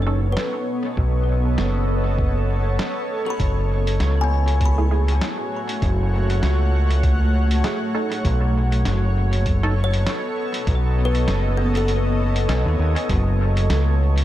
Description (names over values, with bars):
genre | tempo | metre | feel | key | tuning
ambient dub | 99 BPM | 4/4 | swing 57% on 16ths | B mixolydian | A4 = 440 Hz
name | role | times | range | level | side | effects
granular cloud pad | sustained chords | 0.0-14.2 s | A3 to F#5 | -25 LUFS | equal | built-in reverb
kalimba | arpeggios | 0.0-14.2 s | B3 to B5 | -30 LUFS | left 4 dB | tape echo
filtered dub chord stab | stabs | 0.0-0.3, 4.8-12.6 s | A3 to A4 | -31 LUFS | right 4 dB | wide subtle chorus, dub echo
growling fingered electric bass | bass | 0.0-14.2 s | F#1 to D#2 | -19 LUFS | equal | overdrive
lo-fi sampler-style drum kit | drums | 0.4-14.2 s | hi-hat, snare drum | -30 LUFS | right 1 dB | overdrive, dub echo
electronic kick drum | drums | 1.0-13.2 s | none | -23 LUFS | equal | overdrive
room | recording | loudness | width
light reverb, digital ambience | none | -18 LUFS | side -13 dB against mid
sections
0.0-13.1 A section; 13.1-14.2 B section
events
kick drops out 11.9-13.1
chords
0.0 B9; 3.4 F#m; 8.2 B9; 13.1 F#m7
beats
0.37 | 0.97 1.58 2.19 2.79 | 3.40 4.00 4.61 5.22 | 5.82 6.43 7.04 7.64 | 8.25 8.85 9.46 10.06 | 10.67 11.28 11.88 12.49 | 13.10 13.70